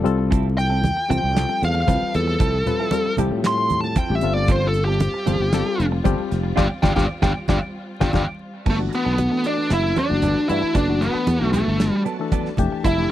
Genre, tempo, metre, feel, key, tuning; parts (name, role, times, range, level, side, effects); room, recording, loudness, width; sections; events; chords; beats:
electric jazz fusion; 115 BPM; 4/4; straight; G major from 8.7 s; A4 = 441 Hz
barky reed electric piano; accompaniment; 0.0-13.1 s; E3 to A5; -26 LUFS; left 8 dB
sustaining fretless electric bass; bass; 0.0-13.1 s; F1 to A2; -22 LUFS; equal
rich symphonic string section; sustained chords; 0.1-13.1 s; F3 to A5; -35 LUFS; right 1 dB
clean electric guitar; stabs; 0.1-13.0 s; F3 to A4; -30 LUFS; right 9 dB; lush chorus
damped 70s drum kit; drums; 0.1-13.0 s; crash cymbal, hi-hat, kick drum, snare drum; -22 LUFS; equal
congas; percussion; 0.3-13.1 s; -26 LUFS; right 2 dB
bluesy overdriven lead guitar; melody; 0.6-13.1 s; A3 to C6; -23 LUFS; equal; distortion
vintage hollow-body jazz guitar; second line; 8.7-13.1 s; A4 to E5; -29 LUFS; equal
little or no reverb; dry, close 1970s-style studio recording, vinyl crackle; -18 LUFS; side -13 dB against mid
0.0-8.7 A section; 8.7-13.1 B section
reed electric piano fill 0.0-0.3, 12.1-12.8; lead electric guitar solo 0.0-8.7; band accent 6.6-8.7; drum fill 8.1-8.7
0.1 Fmaj7/C; 4.2 G9sus4; 8.7 Gmaj9; 12.6 Fmaj9
| 0.32 0.84 1.36 1.88 | 2.40 2.92 3.44 3.96 | 4.48 5.00 5.53 6.05 | 6.57 7.10 7.62 8.14 | 8.66 9.19 9.71 10.23 | 10.76 11.28 11.80 12.32 | 12.84